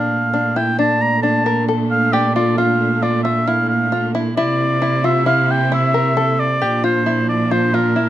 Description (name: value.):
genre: contemporary instrumental, chamber music in an uneven meter.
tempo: 134 BPM.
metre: 5/4.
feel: straight.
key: Bb lydian.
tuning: A4 = 442 Hz.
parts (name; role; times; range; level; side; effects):
clear oboe; melody; 0.0-8.1 s; Bb4 to Bb5; -18 LUFS; equal; none.
muted studio string section; sustained chords; 0.0-8.1 s; C3 to E4; -26 LUFS; left 1 dB; none.
open-back banjo; arpeggios; 0.0-8.1 s; D4 to Bb4; -21 LUFS; left 3 dB; none.
rich cello; bass; 0.0-8.1 s; Bb2 to C3; -19 LUFS; right 3 dB; none.
room: light reverb.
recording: close, detailed microphones.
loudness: -14 LUFS.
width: side -12 dB against mid.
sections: 0.0-8.1 A section.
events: none.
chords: 0.0 Bbmaj7; 4.4 C7; 6.6 Bb.